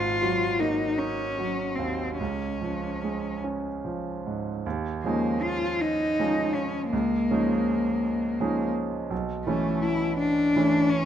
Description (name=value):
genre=classical, impressionist duo for cello and grand piano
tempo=47-56 BPM (dotted quarters)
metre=6/8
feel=rubato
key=Db major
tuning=A4 = 440 Hz
part: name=warm cello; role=melody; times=0.0-11.1 s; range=A3 to F4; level=-26 LUFS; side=left 2 dB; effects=none
part: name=bright concert grand piano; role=accompaniment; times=0.0-11.1 s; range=Ab1 to Eb4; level=-28 LUFS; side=right 4 dB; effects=none
room=light reverb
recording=close, detailed microphones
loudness=-24 LUFS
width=side -10 dB against mid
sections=0.0-4.6 A section; 4.6-11.1 B section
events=none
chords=0.0 Ab9sus4; 2.2 Db; 4.6 Eb9sus4; 6.9 Db69; 9.1 Cbm11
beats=0.98 | 2.19 3.43 | 4.65 5.80 | 6.92 8.03 | 9.11 10.19